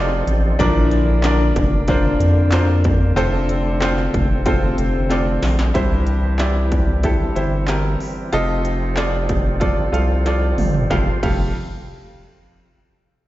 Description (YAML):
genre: piano-driven pop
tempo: 93 BPM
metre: 4/4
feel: straight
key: F major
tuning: A4 = 440 Hz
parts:
  - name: mellow French horn section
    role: second line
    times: 0.0-5.4 s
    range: C3 to F4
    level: -27 LUFS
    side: left 3 dB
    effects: slapback echo
  - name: bright grand piano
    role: accompaniment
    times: 0.0-11.5 s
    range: F2 to F5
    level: -22 LUFS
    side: equal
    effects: slapback echo
  - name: percussive tonewheel organ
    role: sustained chords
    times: 0.0-11.2 s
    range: D3 to C5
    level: -27 LUFS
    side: equal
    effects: overdrive, chorus vibrato, stopped rotary speaker
  - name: round analog bass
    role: bass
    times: 0.0-11.5 s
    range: F1 to F2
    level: -18 LUFS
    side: equal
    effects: none
  - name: industrial drum kit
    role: drums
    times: 0.3-11.4 s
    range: crash cymbal, handclaps, hi-hat, kick drum, snare drum, toms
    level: -22 LUFS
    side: equal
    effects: distortion, overdrive
room: digital ambience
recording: live gig heard through the venue's PA, recital hall reverb, nothing above 7.7 kHz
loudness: -16 LUFS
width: side -15 dB against mid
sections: 0.0-5.8 A section; 5.8-10.9 B section; 10.9-13.3 C section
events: drum fill 5.1-5.8, 10.3-10.9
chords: 0.0 F7; 0.6 Bb; 3.2 F; 5.8 C; 8.3 F7; 10.9 Fadd9